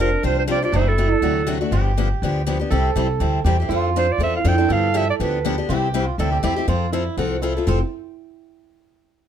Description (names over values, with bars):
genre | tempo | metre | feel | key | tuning
acoustic string swing (jazz manouche) | 242 BPM | 4/4 | swing 55% on 8ths | F major | A4 = 439 Hz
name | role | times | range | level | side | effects
breathy clarinet | melody | 0.0-1.6, 4.0-5.6 s | A4 to G5 | -22 LUFS | right 4 dB | none
picked swing-style acoustic guitar | second line | 0.0-7.8 s | C4 to A4 | -25 LUFS | right 8 dB | none
picked steel-string acoustic guitar | accompaniment | 0.0-7.8 s | C3 to C5 | -23 LUFS | left 4 dB | none
upright bass | bass | 0.0-7.8 s | F1 to G2 | -21 LUFS | equal | none
room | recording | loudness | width
light reverb | none | -18 LUFS | side -9 dB against mid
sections
0.0-7.7 A section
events
none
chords
0.0 Fsus2; 0.7 D7/F#; 1.7 G7; 2.7 C; 3.7 F6; 4.7 G7; 5.7 C; 6.7 F; 7.7 F5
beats
0.24 0.48 | 0.73 0.98 1.23 1.48 | 1.72 1.97 2.22 2.47 | 2.71 2.96 3.21 3.46 | 3.71 3.95 4.20 4.45 | 4.70 4.94 5.19 5.44 | 5.69 5.93 6.18 6.43 | 6.68 6.92 7.17 7.42 | 7.67